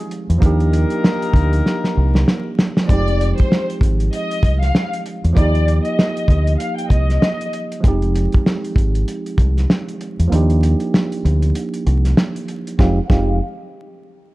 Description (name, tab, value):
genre	hip hop, boom-bap hip-hop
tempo	97 BPM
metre	4/4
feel	swing 59% on 16ths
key	F dorian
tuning	A4 = 444 Hz
part	tine electric piano	accompaniment	0.0-13.4 s	F3 to G4	-23 LUFS	right 3 dB	high-pass filter, low-pass filter
part	mellow horn section	stabs	0.0-2.5 s	Bb3 to Bb4	-25 LUFS	left 5 dB	high-pass filter, low-pass filter, slapback echo
part	cloth-damped thuddy drum kit	drums	0.1-13.3 s	hi-hat, kick drum, snare drum	-16 LUFS	equal	none
part	deep dub fingered electric bass	bass	0.3-13.4 s	F1 to E2	-16 LUFS	equal	none
part	warm symphonic violin section	melody	2.9-7.5, 12.8-13.4 s	C5 to G5	-24 LUFS	left 2 dB	high-pass filter, low-pass filter, slapback echo
room	studio reverb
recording	vinyl crackle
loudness	-15 LUFS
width	side -19 dB against mid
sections	0.0-2.9 A section; 2.9-12.8 B section; 12.8-14.3 C section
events	drum fill 1.7-2.9; filter sweep 2.9-12.8; kick muted 10.3-12.8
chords	0.4 Ebmaj7; 2.9 Fm7; 5.4 Eb; 7.8 Fm7; 10.3 Ebmaj7; 12.8 Fm7